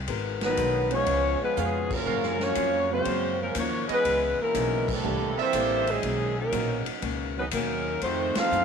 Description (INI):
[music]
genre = jazz, big band swing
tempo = 121 BPM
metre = 4/4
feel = swing 68% on 8ths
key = unclear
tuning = A4 = 440 Hz
[part]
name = upright bass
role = bass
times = 0.0-8.6 s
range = Ab1 to Gb2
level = -33 LUFS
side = equal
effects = none
[part]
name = picked old ladder-braced acoustic guitar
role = accompaniment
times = 0.1-8.6 s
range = Gb2 to Bb4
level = -35 LUFS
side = left 12 dB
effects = none
[part]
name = swinging big-band drum kit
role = drums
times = 0.1-8.6 s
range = crash cymbal, hi-hat, kick drum, ride cymbal, snare drum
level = -34 LUFS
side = left 2 dB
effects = none
[part]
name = warm saxophone section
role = melody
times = 0.4-8.6 s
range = F3 to F5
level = -27 LUFS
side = left 3 dB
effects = none
[part]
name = warm trombone section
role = second line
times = 0.4-8.6 s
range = Bb2 to F4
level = -32 LUFS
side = right 11 dB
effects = none
[part]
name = warm upright piano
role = accompaniment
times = 0.9-7.3 s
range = Fb3 to F5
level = -35 LUFS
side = right 13 dB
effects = none
[part]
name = clear trumpet section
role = stabs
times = 1.6-6.0 s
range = Gb4 to F5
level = -32 LUFS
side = right 12 dB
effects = none
[sound]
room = moderate spring reverb, RT60 2.1 s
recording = 1960s-style stereo with parts hard left and right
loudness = -24 LUFS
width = side -6 dB against mid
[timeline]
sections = 0.0-8.6 A section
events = drum fill 1.6-2.1; band accent 1.8, 4.8, 8.3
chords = 0.1 Abm9; 1.1 Db7; 2.1 Gbmaj7; 4.1 Dbm7; 5.0 C13; 6.0 Bmaj9; 8.0 F7b9